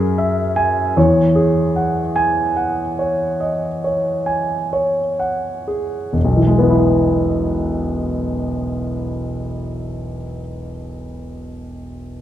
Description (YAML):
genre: classical, impressionist solo piano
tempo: 31-40 BPM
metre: 3/4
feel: rubato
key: E major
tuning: A4 = 440 Hz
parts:
  - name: warm grand piano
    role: solo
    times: 0.0-12.2 s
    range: E1 to G#5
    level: -17 LUFS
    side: equal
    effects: none
room: wet recital hall reverb, RT60 1.4 s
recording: none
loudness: -16 LUFS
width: side -11 dB against mid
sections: 0.0-6.1 A section; 6.1-11.5 B section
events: slowing down 0.0-6.1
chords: 0.0 F#9; 0.9 E69; 6.1 E